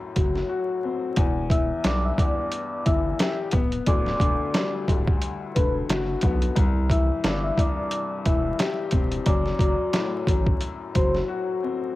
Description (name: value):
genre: hip hop, boom-bap hip-hop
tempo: 89 BPM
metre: 4/4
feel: swing 58% on 16ths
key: unclear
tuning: A4 = 440 Hz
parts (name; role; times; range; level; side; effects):
- dark upright piano; accompaniment; 0.0-12.0 s; C2 to G4; -27 LUFS; left 4 dB; cassette tape, high-pass filter, low-pass filter
- saturated sub bass; bass; 0.2-11.2 s; D1 to C2; -27 LUFS; equal; none
- trip hop sampler-style drum kit; drums; 0.2-11.2 s; hi-hat, kick drum, snare drum; -24 LUFS; equal; overdrive, cassette tape
- vibraphone with soft mallets; melody; 1.5-11.1 s; B4 to E6; -29 LUFS; equal; high-pass filter, low-pass filter, cassette tape, analog delay
room: small room ambience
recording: home recording on cassette, vinyl crackle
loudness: -21 LUFS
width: side -17 dB against mid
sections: 0.0-1.2 A section; 1.2-12.0 B section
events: break 0.5-1.2, 11.3-12.0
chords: 0.0 F#dim; 1.2 Em; 3.5 Gmaj7/D; 6.6 C; 9.3 F#dim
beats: 0.50 | 1.17 1.85 2.52 3.19 | 3.87 4.54 5.22 5.89 | 6.57 7.24 7.91 8.59 | 9.26 9.94 10.61 11.28